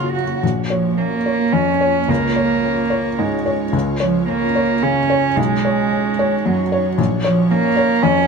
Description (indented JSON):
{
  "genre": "neoclassical piano and strings",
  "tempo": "110 BPM",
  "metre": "3/4",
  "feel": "uneven beats, rubato",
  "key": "unclear",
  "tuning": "A4 = 440 Hz",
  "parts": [
    { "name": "warm cello", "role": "second line", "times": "0.0-8.3 s", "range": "E#3 to F#4", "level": "-18 LUFS", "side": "right 5 dB", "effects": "tape echo" },
    { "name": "felt-muted upright piano", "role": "accompaniment", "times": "0.0-8.3 s", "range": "A#1 to C#5", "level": "-19 LUFS", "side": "left 4 dB", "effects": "none" },
    { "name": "ethereal airy pad", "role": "sustained chords", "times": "0.0-8.3 s", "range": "A#3 to C#5", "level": "-27 LUFS", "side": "right 1 dB", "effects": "ensemble chorus, built-in reverb, tremolo" }
  ],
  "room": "light reverb",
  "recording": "close, detailed microphones",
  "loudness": "-15 LUFS",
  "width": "side -5 dB against mid",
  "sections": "0.4-8.3 A section",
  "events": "none",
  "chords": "0.4 A#m; 2.1 C#; 3.7 A#m/C#; 5.4 Badd9; 7.0 A#m"
}